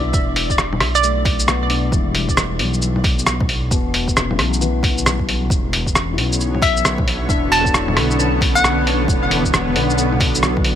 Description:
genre	future garage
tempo	134 BPM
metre	4/4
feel	swing 63% on 16ths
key	E dorian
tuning	A4 = 440 Hz
part	hollow square pluck	melody	0.0-1.4, 6.6-9.2 s	D5 to A5	-22 LUFS	right 1 dB	chorus, tape echo
part	felt-muted upright piano	accompaniment	0.0-10.8 s	B2 to A4	-25 LUFS	left 7 dB	sidechain pumping, ping-pong delay
part	dark detuned saw bass	bass	0.0-10.8 s	E1 to B1	-22 LUFS	right 1 dB	tube saturation, sidechain pumping
part	electronic kick drum	drums	0.1-10.6 s	none	-21 LUFS	equal	none
part	lo-fi sampler-style drum kit	drums	0.1-10.8 s	bongos, hi-hat, rim click, shaker	-20 LUFS	equal	none
part	granular cloud pad	sustained chords	6.2-10.8 s	D3 to C#5	-22 LUFS	right 1 dB	built-in reverb, sidechain pumping
room	light reverb, digital ambience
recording	none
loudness	-15 LUFS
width	side -10 dB against mid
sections	0.0-10.8 A section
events	none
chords	0.0 Em9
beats	| 0.13 0.58 1.03 1.47 | 1.92 2.37 2.82 3.27 | 3.71 4.16 4.61 5.06 | 5.50 5.95 6.40 6.85 | 7.29 7.74 8.19 8.64 | 9.09 9.53 9.98 10.43

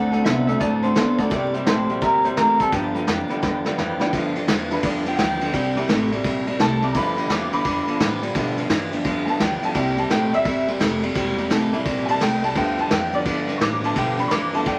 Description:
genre	rockabilly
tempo	171 BPM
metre	4/4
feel	swing 65% on 8ths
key	G mixolydian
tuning	A4 = 437 Hz
part	electric guitar through a small old amp	melody	0.0-3.8 s	G4 to F#5	-25 LUFS	equal	spring reverb
part	honky-tonk upright piano	accompaniment	0.0-14.8 s	A3 to D6	-28 LUFS	equal	none
part	picked steel-string acoustic guitar	accompaniment	0.0-14.8 s	G2 to A4	-33 LUFS	equal	none
part	electric guitar through a small old amp	riff	0.0-14.8 s	G2 to B3	-26 LUFS	equal	spring reverb
part	upright bass	bass	0.0-14.8 s	E1 to B2	-34 LUFS	equal	none
part	vintage brush drum kit	drums	0.1-14.8 s	hi-hat, kick drum, ride cymbal, snare drum	-27 LUFS	equal	none
room	light reverb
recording	vinyl crackle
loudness	-21 LUFS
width	mono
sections	0.0-4.1 A section; 4.1-14.8 B section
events	drum fill 3.4-4.1; honky-tonk piano solo 4.1-14.8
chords	0.0 D7; 1.3 C7; 2.7 G7; 5.5 C7; 6.9 G7; 9.8 C7; 12.6 G7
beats	0.26 0.61 0.96 | 1.31 1.67 2.02 2.37 | 2.73 3.08 3.43 3.78 | 4.13 4.49 4.84 5.19 | 5.54 5.89 6.24 6.60 | 6.95 7.30 7.65 8.00 | 8.35 8.70 9.05 9.40 | 9.75 10.10 10.45 10.80 | 11.15 11.51 11.86 12.21 | 12.56 12.91 13.26 13.61 | 13.96 14.31 14.66

